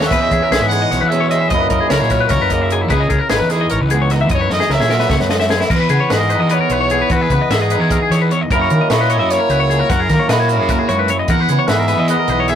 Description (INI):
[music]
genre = math rock and midwest emo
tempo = 300 BPM (eighths)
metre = 7/8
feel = straight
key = E lydian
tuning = A4 = 440 Hz
[part]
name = brilliant trumpet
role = melody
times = 0.0-12.6 s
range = F#4 to F#5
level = -19 LUFS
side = right 1 dB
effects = none
[part]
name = electric guitar through a small old amp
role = accompaniment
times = 0.0-12.6 s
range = E2 to G#4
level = -20 LUFS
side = right 1 dB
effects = none
[part]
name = twelve-string electric guitar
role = arpeggios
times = 0.0-12.6 s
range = E4 to E5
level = -19 LUFS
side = left 6 dB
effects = none
[part]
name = fuzz fingered electric bass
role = bass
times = 0.0-12.6 s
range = G#1 to D#3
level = -18 LUFS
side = equal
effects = overdrive
[part]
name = compact cocktail drum kit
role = drums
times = 0.0-12.6 s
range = crash cymbal, hi-hat, kick drum, snare drum, splash cymbal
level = -20 LUFS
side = equal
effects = none
[sound]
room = moderate booth ambience, RT60 0.2 s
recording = rough rehearsal-room recording, warm saturation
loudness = -12 LUFS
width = side -9 dB against mid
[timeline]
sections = 0.0-5.7 A section; 5.7-12.6 B section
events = drum fill 4.5-5.7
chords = 0.1 E6; 1.5 F#13; 2.9 C#m9; 4.3 F#13; 5.7 Emaj7; 8.5 F#7; 11.3 Emaj7